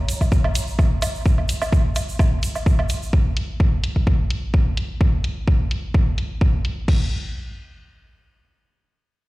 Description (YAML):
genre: minimal techno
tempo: 128 BPM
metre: 4/4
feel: swing 53% on 16ths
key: none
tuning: none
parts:
  - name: house drum kit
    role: drums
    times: 0.1-7.0 s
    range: crash cymbal, hi-hat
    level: -30 LUFS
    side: left 1 dB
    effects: low-pass filter on snare, low-pass filter on hats, low-pass filter on cymbals
  - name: egg shaker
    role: percussion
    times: 0.1-3.1 s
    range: none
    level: -34 LUFS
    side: right 2 dB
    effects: none
  - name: electronic kick drum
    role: drums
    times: 0.2-7.0 s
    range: none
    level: -17 LUFS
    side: equal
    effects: none
  - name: woodblock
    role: percussion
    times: 0.2-2.9 s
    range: none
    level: -30 LUFS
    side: right 2 dB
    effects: overdrive, dub echo
room: little or no reverb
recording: played on a big sound system in a bare room, large studio reverb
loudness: -18 LUFS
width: side -20 dB against mid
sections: 0.0-6.9 A section; 6.9-9.3 B section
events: none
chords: none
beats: 0.32 0.79 | 1.26 1.73 2.19 2.66 | 3.13 3.60 4.07 4.54 | 5.01 5.47 5.94 6.41 | 6.88